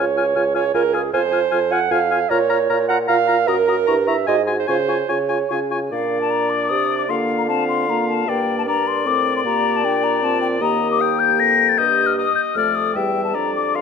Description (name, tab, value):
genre	quick classical-period movement for wind quintet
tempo	153 BPM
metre	3/4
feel	straight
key	Db major, Bb major from 5.9 s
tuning	A4 = 440 Hz
part	mellow hollow silver concert flute	melody	0.0-13.8 s	F5 to Bb6	-21 LUFS	left 11 dB	none
part	bright oboe	second line	0.0-13.8 s	D5 to Bb5	-24 LUFS	left 4 dB	none
part	clear French horn	accompaniment	0.0-13.8 s	G3 to Gb4	-27 LUFS	left 1 dB	none
part	warm clarinet	accompaniment	0.0-13.8 s	F4 to Gb5	-21 LUFS	right 8 dB	none
part	mellow bassoon	bass	0.0-13.8 s	Db2 to D3	-24 LUFS	right 2 dB	none
room	moderate recital hall reverb, RT60 1.6 s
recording	none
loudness	-16 LUFS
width	side -6 dB against mid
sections	0.0-5.9 A section; 5.9-13.8 B section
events	none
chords	0.0 Db; 1.1 Fm; 2.3 Bbm; 3.5 Ebm/Gb (rootless); 3.9 Gm6; 4.3 Ab7(no3); 4.7 Db; 5.9 Bb; 7.1 Bb/D; 8.3 Gm; 9.4 Gm/Bb; 10.6 Eb; 11.8 Eb/G; 13.0 Emadd11; 13.3 Bb/F